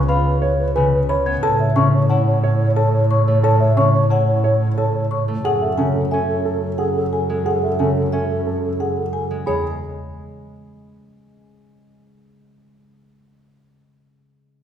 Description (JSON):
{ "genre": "classical, minimalist pattern music", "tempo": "179 BPM", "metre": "6/4", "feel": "straight", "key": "unclear", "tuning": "A4 = 441 Hz", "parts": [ { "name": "mellow hollow alto flute", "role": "second line", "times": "0.0-9.3 s", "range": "A4 to C#5", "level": "-23 LUFS", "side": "equal", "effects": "none" }, { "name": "concert harp", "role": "accompaniment", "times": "0.0-12.9 s", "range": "C#3 to E#4", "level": "-24 LUFS", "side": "left 2 dB", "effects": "none" }, { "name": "rich double bass", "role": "bass", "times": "0.0-9.6 s", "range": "C#2 to A2", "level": "-20 LUFS", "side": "right 1 dB", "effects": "none" }, { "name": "marimba with medium hard mallets", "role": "melody", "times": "0.1-9.6 s", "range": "C#5 to C#6", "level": "-26 LUFS", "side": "left 4 dB", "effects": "none" }, { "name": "celesta", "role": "arpeggios", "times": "0.1-9.6 s", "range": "E5 to G#6", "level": "-27 LUFS", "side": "left 1 dB", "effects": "none" }, { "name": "dark grand piano", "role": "arpeggios", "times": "0.4-9.6 s", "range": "C#4 to C#5", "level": "-24 LUFS", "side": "right 3 dB", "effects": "none" } ], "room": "wet recital hall reverb, RT60 1.6 s", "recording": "recorded in a church or concert hall", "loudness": "-16 LUFS", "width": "side -9 dB against mid", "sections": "0.0-9.5 A section; 9.5-13.5 B section", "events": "none", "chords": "0.0 C#7; 1.4 A; 5.5 F#madd9; 9.5 N.C." }